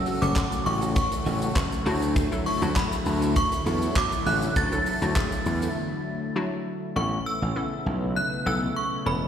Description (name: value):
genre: dance-pop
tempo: 100 BPM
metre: 4/4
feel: straight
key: A major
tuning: A4 = 441 Hz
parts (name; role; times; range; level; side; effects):
- synth chime; melody; 0.0-9.3 s; B5 to A6; -29 LUFS; right 1 dB; ensemble chorus, phaser, tremolo, ping-pong delay, slapback echo
- hollow square pluck; accompaniment; 0.0-9.3 s; F#3 to A4; -32 LUFS; left 3 dB; chorus, sidechain pumping, slapback echo
- lush unison pad; sustained chords; 0.0-9.3 s; C#3 to F#4; -32 LUFS; left 1 dB; chorus, phaser, sidechain pumping
- direct-recorded clean electric guitar; riff; 0.1-5.8 s; F#3 to A4; -36 LUFS; right 5 dB; ensemble chorus, slapback echo
- huge arena drum kit; drums; 0.1-5.8 s; handclaps, hi-hat, kick drum, shaker; -28 LUFS; equal; none
- gritty slap bass; bass; 0.2-9.3 s; E1 to E2; -26 LUFS; equal; overdrive, sidechain pumping
- egg shaker; percussion; 0.2-5.8 s; none; -49 LUFS; left 3 dB; none
room: light reverb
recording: live gig heard through the venue's PA, recital hall reverb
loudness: -23 LUFS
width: side -9 dB against mid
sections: 0.0-7.0 A section; 7.0-9.3 B section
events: break 5.8-7.0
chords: 0.0 F#m; 1.9 Dadd9; 7.0 Aadd9